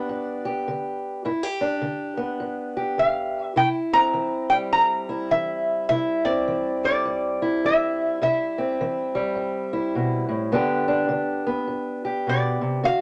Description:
acoustic country blues, solo or duo; 104 BPM; 4/4; swing 61% on 8ths; G major; A4 = 440 Hz
metal-body resonator slide guitar; melody; 0.0-13.0 s; D5 to Bb5; -24 LUFS; equal
fingerpicked steel-string acoustic guitar; accompaniment; 0.0-13.0 s; G2 to G4; -27 LUFS; equal
moderate studio ambience, RT60 0.5 s; nothing above 10.6 kHz; -24 LUFS; mono
0.0-13.0 A section
0.0 G; 3.6 C; 10.5 G
0.10 0.68 | 1.26 1.84 2.42 3.00 | 3.58 4.16 4.74 5.32 | 5.89 6.47 7.05 7.63 | 8.21 8.79 9.37 9.95 | 10.52 11.10 11.68 12.26 | 12.84

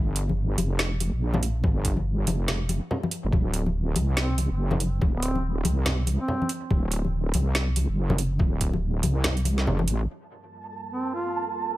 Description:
deep dubstep; 142 BPM; 4/4; swing 59% on 16ths, half-time; G minor; A4 = 440 Hz
wobble bass; bass; 0.0-10.1 s; D1 to C2; -25 LUFS; equal; chorus, tube saturation
garage drum kit; drums; 0.2-10.0 s; hi-hat, snare drum; -29 LUFS; right 2 dB; overdrive, studio ambience
congas; percussion; 0.3-9.9 s; -30 LUFS; left 2 dB; dub echo
electronic kick drum; drums; 1.6-8.7 s; -24 LUFS; equal; studio ambience
mellow duduk; melody; 4.2-6.5, 10.9-11.5 s; C4 to F4; -32 LUFS; right 1 dB; dub echo
dark analog pad; sustained chords; 10.1-11.8 s; G3 to Bb4; -43 LUFS; right 1 dB; chorus
flickering grainy texture; texture; 10.6-11.8 s; A5; -32 LUFS; right 7 dB; built-in reverb
little or no reverb; -23 LUFS; side -16 dB against mid
0.0-10.1 A section; 10.1-11.8 B section
filter sweep on analog synth pad 10.1-11.8
0.0 Gm7; 3.3 D; 10.1 Gm7
0.37 0.79 1.22 | 1.64 2.06 2.48 2.90 | 3.33 3.75 4.17 4.59 | 5.02 5.44 5.86 6.29 | 6.71 7.13 7.55 7.97 | 8.40 8.82 9.24 9.66 | 10.09 10.51 10.93 11.36

